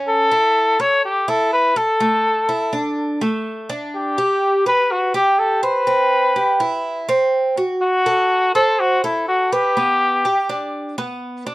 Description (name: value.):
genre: latin.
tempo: 124 BPM.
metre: 4/4.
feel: straight.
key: G major.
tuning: A4 = 441 Hz.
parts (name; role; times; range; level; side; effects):
Cuban tres; arpeggios; 0.0-11.5 s; A3 to C5; -20 LUFS; right 2 dB; none.
warm trumpet; melody; 0.1-11.0 s; E4 to C#5; -16 LUFS; left 1 dB; none.
room: light reverb.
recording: dry, close 1970s-style studio recording.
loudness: -15 LUFS.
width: side -18 dB against mid.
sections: 0.0-11.5 A section.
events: none.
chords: 0.1 A5; 2.0 Dsus2; 3.9 G; 5.9 C; 7.8 Am69; 9.8 G.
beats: | 0.07 0.55 1.04 1.52 | 2.00 2.48 2.97 3.45 | 3.94 4.42 4.90 5.39 | 5.87 6.36 6.84 7.33 | 7.82 8.30 8.79 9.28 | 9.76 10.25 10.74 11.22.